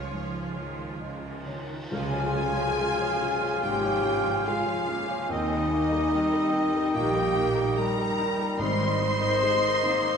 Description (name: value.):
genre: cinematic, emotional film score for orchestra.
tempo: 65-74 BPM.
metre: 4/4.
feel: rubato.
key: Db lydian.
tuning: A4 = 440 Hz.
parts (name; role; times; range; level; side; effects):
rich studio violin section; melody; 0.0-10.2 s; Db5 to C6; -35 LUFS; left 2 dB; none.
rich symphonic violin section; second line; 0.0-10.2 s; Ab4 to C6; -34 LUFS; left 1 dB; none.
felt-muted upright piano; accompaniment; 0.0-10.2 s; Db2 to Eb5; -33 LUFS; left 2 dB; none.
rich symphonic viola section; accompaniment; 0.0-10.2 s; C3 to F4; -35 LUFS; right 2 dB; none.
rich symphonic cello section; bass; 0.0-9.3 s; Db2 to G3; -37 LUFS; right 4 dB; none.
rich symphonic double bass section; bass; 0.0-9.3 s; Ab1 to Eb2; -36 LUFS; right 4 dB; none.
mellow flute section; second line; 1.9-10.2 s; Eb5 to Ab5; -34 LUFS; equal; none.
warm oboe; second line; 1.9-10.2 s; Eb5 to F5; -33 LUFS; right 2 dB; none.
mellow French horn section; sustained chords; 1.9-10.2 s; Eb4 to C5; -28 LUFS; left 2 dB; none.
tam-tam; percussion; 1.9-5.3 s; none; -41 LUFS; left 2 dB; none.
mellow clarinet; second line; 3.6-10.2 s; G3 to C4; -35 LUFS; equal; none.
timpani; percussion; 8.6-9.8 s; Ab2; -36 LUFS; right 1 dB; none.
room: wet scoring stage reverb, RT60 1.4 s.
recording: nothing above 10.5 kHz.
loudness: -23 LUFS.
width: side -6 dB against mid.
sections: 0.0-1.9 A section; 1.9-10.2 B section.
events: band accent 1.9-2.8.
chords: 0.0 Db; 5.3 Eb; 8.6 Ab.